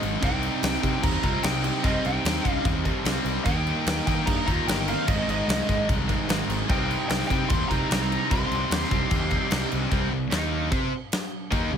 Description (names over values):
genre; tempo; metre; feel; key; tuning
hard rock; 149 BPM; 4/4; straight; C minor; A4 = 440 Hz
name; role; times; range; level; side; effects
crunchy overdriven guitar; riff; 0.0-11.8 s; Ab2 to C5; -32 LUFS; right 13 dB; none
overdriven electric guitar; riff; 0.0-11.8 s; Ab2 to C5; -32 LUFS; right 1 dB; none
tight distorted guitar; riff; 0.0-11.8 s; Ab2 to C5; -32 LUFS; left 14 dB; distortion
fuzz picked electric bass; bass; 0.0-11.8 s; G1 to Eb3; -29 LUFS; equal; overdrive
huge arena drum kit; drums; 0.0-11.6 s; crash cymbal, kick drum, snare drum; -27 LUFS; equal; none
biting lead guitar; melody; 0.2-9.7 s; Eb5 to C6; -30 LUFS; left 1 dB; overdrive, tape echo
high-gain lead guitar; second line; 0.2-9.7 s; Ab3 to G4; -34 LUFS; right 2 dB; distortion
room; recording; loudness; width
little or no reverb; none; -22 LUFS; side -8 dB against mid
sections
0.0-9.9 A section; 9.9-11.8 B section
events
none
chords
0.2 Cm; 3.5 Eb; 5.1 Ab; 6.7 Cm; 9.9 C5; 10.3 Eb5; 10.7 Cm